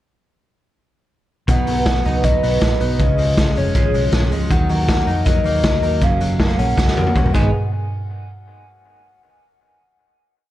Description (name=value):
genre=jangly indie pop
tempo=159 BPM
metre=4/4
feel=straight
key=unclear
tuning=A4 = 440 Hz
part: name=hollow clarinet-like synth lead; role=melody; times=1.5-7.5 s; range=C#5 to G#5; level=-23 LUFS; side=left 1 dB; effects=chorus, phaser, tape echo
part: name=picked twelve-string acoustic guitar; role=accompaniment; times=1.5-7.5 s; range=F#2 to D#4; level=-25 LUFS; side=right 4 dB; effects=none
part: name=direct-recorded clean electric guitar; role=arpeggios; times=1.5-7.5 s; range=F#2 to D#4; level=-24 LUFS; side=left 3 dB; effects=spring reverb
part: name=vintage muted fingered electric bass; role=bass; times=1.5-7.5 s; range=E#1 to E#2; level=-22 LUFS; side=equal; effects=none
part: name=raw garage drum kit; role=drums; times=1.5-7.4 s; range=crash cymbal, hi-hat, kick drum, snare drum, toms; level=-18 LUFS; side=equal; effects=none
room=light reverb, studio reverb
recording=cassette tape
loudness=-15 LUFS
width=side -14 dB against mid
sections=1.5-7.5 verse; 7.5-9.0 final hit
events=drum fill 6.8-7.5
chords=1.5 B; 3.0 C#; 4.5 D#m; 6.0 F#; 7.3 G#m; 7.5 N.C.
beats=| 1.48 1.86 2.24 2.62 | 2.99 3.37 3.75 4.13 | 4.51 4.88 5.26 5.64 | 6.02 6.39 6.77 7.15